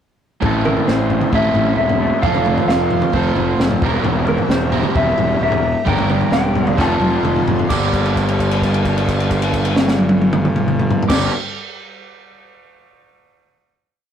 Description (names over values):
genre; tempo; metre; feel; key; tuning
indie rock; 132 BPM; 4/4; straight; G dorian; A4 = 439 Hz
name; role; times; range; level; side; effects
string machine, violas; sustained chords; 0.4-11.3 s; G3 to C6; -30 LUFS; equal; ensemble chorus
overdriven semi-hollow guitar; riff; 0.4-11.3 s; E2 to Bb4; -21 LUFS; right 4 dB; none
raw garage guitar; riff; 0.4-11.3 s; E2 to Bb4; -24 LUFS; left 4 dB; overdrive
fuzz fingered electric bass; bass; 0.4-11.3 s; E1 to A1; -20 LUFS; equal; overdrive
compact cocktail drum kit; drums; 0.4-11.2 s; crash cymbal, kick drum, snare drum, toms; -20 LUFS; left 1 dB; none
mellow electric guitar; melody; 0.7-11.3 s; Bb4 to D6; -21 LUFS; equal; none
room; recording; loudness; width
moderate studio reverb, RT60 0.5 s; rough rehearsal-room recording, warm saturation; -14 LUFS; side -8 dB against mid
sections
0.4-7.7 pre-chorus; 7.7-11.4 final chord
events
drum fill 6.8-7.7; held note 7.7-11.1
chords
0.4 Am; 2.2 F; 3.8 C7/E; 5.9 Gm7; 6.8 F; 7.7 Gm7